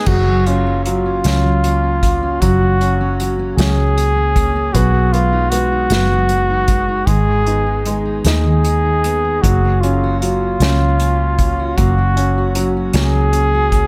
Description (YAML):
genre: six-eight pop ballad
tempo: 51 BPM (dotted quarters)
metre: 6/8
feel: straight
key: F# major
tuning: A4 = 440 Hz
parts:
  - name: breathy flugelhorn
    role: melody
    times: 0.0-13.9 s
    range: E#4 to G#4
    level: -21 LUFS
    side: equal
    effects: tape echo
  - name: clear upright piano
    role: accompaniment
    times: 0.0-13.9 s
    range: F#3 to D#4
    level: -25 LUFS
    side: equal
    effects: tape echo
  - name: fingerpicked steel-string acoustic guitar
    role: arpeggios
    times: 0.0-13.9 s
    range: D#3 to G#4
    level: -26 LUFS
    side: equal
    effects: tape echo
  - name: vintage muted fingered electric bass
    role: bass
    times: 0.1-13.9 s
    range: F#1 to D#2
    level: -19 LUFS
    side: equal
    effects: none
  - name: unplugged drum kit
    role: drums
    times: 0.1-13.9 s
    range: crash cymbal, hi-hat, kick drum, snare drum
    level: -22 LUFS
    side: equal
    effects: none
room: light reverb, small room ambience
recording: echo-heavy mix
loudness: -15 LUFS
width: mono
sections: 0.1-13.9 A section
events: none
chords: 0.1 F#; 7.1 G#m; 9.4 F#